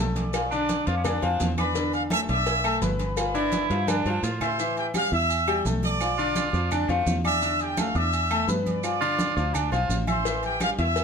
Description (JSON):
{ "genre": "latin, salsa", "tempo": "169 BPM", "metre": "4/4", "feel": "straight", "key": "A minor", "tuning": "A4 = 445 Hz", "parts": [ { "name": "bright concert grand piano", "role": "accompaniment", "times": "0.0-11.0 s", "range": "D3 to E6", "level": "-28 LUFS", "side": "left 4 dB", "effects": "none" }, { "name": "fingered electric bass", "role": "bass", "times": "0.0-11.0 s", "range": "G1 to A2", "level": "-29 LUFS", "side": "equal", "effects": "none" }, { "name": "clear trumpet section", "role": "melody", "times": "0.2-11.0 s", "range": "G4 to E6", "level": "-28 LUFS", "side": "right 1 dB", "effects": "none" }, { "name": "agogo bells and timbales", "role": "percussion", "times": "0.2-11.0 s", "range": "none", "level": "-35 LUFS", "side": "right 9 dB", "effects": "none" }, { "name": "congas", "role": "percussion", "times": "0.2-11.0 s", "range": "none", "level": "-32 LUFS", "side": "right 1 dB", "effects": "none" }, { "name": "cowbell", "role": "percussion", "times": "0.2-4.6, 10.3-11.0 s", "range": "none", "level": "-34 LUFS", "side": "left 8 dB", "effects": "none" }, { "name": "maracas", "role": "percussion", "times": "0.2-11.0 s", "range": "none", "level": "-39 LUFS", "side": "right 8 dB", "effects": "none" }, { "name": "claves", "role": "percussion", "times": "0.3-10.8 s", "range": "none", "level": "-40 LUFS", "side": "right 7 dB", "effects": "none" }, { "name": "raspy baritone saxophone", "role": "second line", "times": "0.5-10.0 s", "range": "A3 to F4", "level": "-30 LUFS", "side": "right 6 dB", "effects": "none" } ], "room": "moderate studio reverb, RT60 0.7 s", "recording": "none", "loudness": "-22 LUFS", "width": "side -6 dB against mid", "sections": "0.0-4.6 A section; 4.6-11.0 A section", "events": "drum fill 3.9-4.6", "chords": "0.3 Bdim; 1.8 E7sus4; 3.2 G7; 4.6 Am7; 6.0 Bdim; 7.4 E7sus4; 8.8 Am7" }